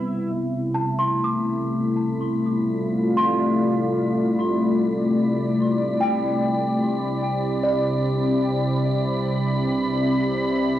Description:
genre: ambient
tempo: 74 BPM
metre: 4/4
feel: straight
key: unclear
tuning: A4 = 444 Hz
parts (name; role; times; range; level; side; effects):
- warm analog pad; sustained chords; 0.0-10.8 s; C3 to B5; -22 LUFS; equal; chorus, cassette tape
- worn celesta; arpeggios; 0.0-10.8 s; D5 to D6; -27 LUFS; equal; cassette tape, tape echo, plate reverb
- analog drone; drone; 0.0-10.8 s; C3 to G3; -27 LUFS; equal; chorus, cassette tape
- wind-like tuned noise texture; texture; 1.0-10.8 s; B5; -38 LUFS; right 3 dB; built-in reverb, cassette tape
room: wet small room reverb, RT60 0.5 s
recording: home recording on cassette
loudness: -20 LUFS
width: side -12 dB against mid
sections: 0.3-10.8 A section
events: fade-in on synth texture 0.3-10.8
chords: 0.3 Dm7/C; 6.8 Cmaj9

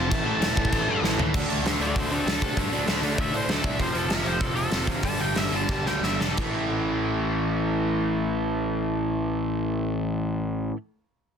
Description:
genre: punk rock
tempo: 167-197 BPM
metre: 4/4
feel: straight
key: A minor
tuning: A4 = 436 Hz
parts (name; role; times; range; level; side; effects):
- biting lead guitar; melody; 0.0-6.4 s; C4 to A5; -30 LUFS; left 2 dB; overdrive
- overdriven electric guitar; riff; 0.0-10.8 s; F2 to D4; -26 LUFS; equal; none
- fuzz picked electric bass; bass; 0.0-10.7 s; E1 to C3; -30 LUFS; equal; overdrive
- big rock drum kit; drums; 0.1-6.5 s; crash cymbal, hi-hat, kick drum, snare drum, toms; -27 LUFS; equal; soft clipping on kick
room: little or no reverb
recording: dense, heavily limited modern master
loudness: -23 LUFS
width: side -7 dB against mid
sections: 0.0-1.3 A section; 1.3-6.4 B section; 6.4-9.2 C section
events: drum fill 1.0-1.3, 5.7-6.4; lead electric guitar solo 1.3-6.4; slowing down 3.8-6.4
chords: 0.1 A5; 1.3 D5; 3.8 F; 5.0 G5; 6.4 A5

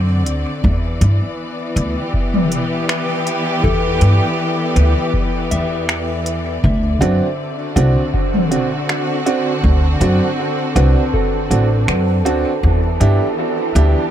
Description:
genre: ambient dub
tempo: 80 BPM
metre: 4/4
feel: straight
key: E minor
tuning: A4 = 440 Hz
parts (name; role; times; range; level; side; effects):
- rich symphonic string section; sustained chords; 0.0-14.1 s; D3 to D5; -21 LUFS; left 1 dB; none
- soft synth bell; arpeggios; 0.0-12.8 s; A4 to E5; -27 LUFS; left 3 dB; chorus, dub echo
- upright bass; bass; 0.0-13.9 s; A1 to G2; -15 LUFS; equal; none
- organic electronic drum kit; drums; 0.3-13.9 s; finger snaps, hi-hat, toms; -21 LUFS; equal; overdrive
- electronic kick drum; drums; 0.6-12.8 s; none; -21 LUFS; equal; none
- wind-like tuned noise texture; texture; 7.4-14.1 s; A4; -28 LUFS; right 8 dB; built-in reverb
- bright upright piano; stabs; 7.0-14.0 s; C4 to G4; -20 LUFS; right 3 dB; dub echo
room: light reverb, digital ambience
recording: none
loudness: -14 LUFS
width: side -10 dB against mid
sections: 0.0-14.1 A section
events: none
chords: 0.0 D7; 0.6 Em7; 6.6 D7; 12.6 Em7

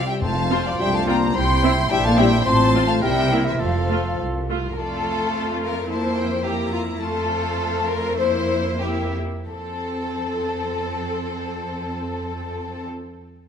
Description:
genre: quick classical-period movement for symphony orchestra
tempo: 88-110 BPM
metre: 2/4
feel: rubato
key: F major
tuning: A4 = 440 Hz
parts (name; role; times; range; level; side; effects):
- rich chamber violin section; melody; 0.0-12.9 s; C5 to C6; -31 LUFS; left 3 dB; none
- mellow concert flute; second line; 0.0-4.2 s; E5 to C6; -27 LUFS; left 3 dB; none
- rich chamber violin section; second line; 0.0-12.9 s; F4 to A5; -26 LUFS; left 3 dB; none
- rich chamber viola section; accompaniment; 0.0-12.9 s; A3 to A4; -27 LUFS; equal; none
- dark French horn section; sustained chords; 0.1-4.2 s; E3 to C4; -25 LUFS; left 5 dB; none
- clear clarinet; second line; 0.2-4.5 s; E4 to F4; -30 LUFS; right 1 dB; none
- clear oboe; second line; 0.2-4.5 s; A4 to C5; -29 LUFS; right 2 dB; none
- rich studio double bass section; bass; 0.2-4.7 s; F1 to C2; -26 LUFS; right 2 dB; none
- rich symphonic cello section; bass; 0.2-12.9 s; C2 to C3; -27 LUFS; right 1 dB; none
- timpani; percussion; 0.2-1.0 s; F2; -32 LUFS; left 2 dB; none
- mellow bassoon; accompaniment; 0.8-4.5 s; C4 to F4; -28 LUFS; right 2 dB; none
room: moderate scoring stage reverb, RT60 1.7 s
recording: none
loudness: -19 LUFS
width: side -8 dB against mid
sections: 0.0-4.8 A section; 4.8-9.5 B section; 9.5-12.1 C section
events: slowing down 6.5-9.5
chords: 0.2 F5; 1.3 C; 1.9 C7/Bb; 2.5 F/A; 3.0 C7; 3.6 F; 5.9 C7/F; 7.0 F; 8.2 C7/F; 9.5 F

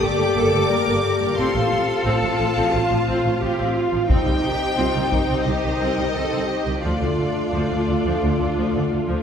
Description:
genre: cinematic, epic orchestral film score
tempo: 88 BPM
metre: 4/4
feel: straight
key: unclear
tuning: A4 = 441 Hz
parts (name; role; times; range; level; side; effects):
- bright studio violin section; melody; 0.0-8.9 s; D5 to D6; -28 LUFS; left 2 dB; none
- dark symphonic violin section; second line; 0.0-9.2 s; F4 to F5; -26 LUFS; left 3 dB; none
- rich symphonic viola section; accompaniment; 0.0-9.2 s; D3 to G4; -27 LUFS; equal; none
- mellow French horn section; sustained chords; 0.0-9.2 s; A3 to G4; -25 LUFS; left 2 dB; none
- rich studio cello section; bass; 0.0-9.2 s; Eb4 to Bb4; -27 LUFS; right 2 dB; none
- rich symphonic double bass section; bass; 0.0-9.2 s; G1 to D2; -24 LUFS; right 1 dB; none
- taiko ensemble; drums; 4.1-5.4 s; none; -23 LUFS; equal; none
room: wet recital hall reverb, RT60 1.6 s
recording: recorded in a church or concert hall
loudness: -18 LUFS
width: side -7 dB against mid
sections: 0.0-9.2 A section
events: none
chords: 0.0 Gmadd9; 1.4 F/A; 4.1 Cm; 6.8 Dm

